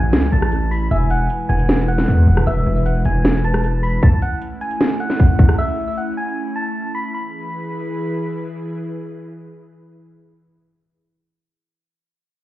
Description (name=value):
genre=hip hop, trap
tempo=154 BPM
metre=4/4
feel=half-time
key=E major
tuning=A4 = 440 Hz
part: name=soft electric-piano-like synth keys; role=melody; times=0.0-8.3 s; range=E5 to B5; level=-25 LUFS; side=equal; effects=chorus
part: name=airy breathy pad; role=sustained chords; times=0.0-10.1 s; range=E3 to B4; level=-25 LUFS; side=right 1 dB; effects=chorus
part: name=distorted 808-style bass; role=bass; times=0.0-4.0 s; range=E1 to E2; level=-17 LUFS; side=equal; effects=distortion
part: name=trap drum kit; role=drums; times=0.1-5.6 s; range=hi-hat, kick drum, rim click, snare drum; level=-16 LUFS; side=equal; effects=overdrive
part: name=breathy flute-like synth lead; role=second line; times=0.9-1.7 s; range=F#5 to G#5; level=-28 LUFS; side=right 2 dB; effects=chorus, digital delay
room=light reverb, digital ambience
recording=heard muffled through a wall, club reverb, EQ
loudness=-16 LUFS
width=side -15 dB against mid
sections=0.0-7.1 A section; 7.1-10.3 B section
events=none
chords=0.0 A; 0.9 E; 4.0 A; 7.1 E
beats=0.13 0.52 | 0.91 1.30 1.69 2.08 | 2.47 2.86 3.25 3.64 | 4.03 4.42 4.81 5.20 | 5.59 5.97 6.37 6.75 | 7.14 7.53 7.92 8.31 | 8.70 9.09 9.48 9.87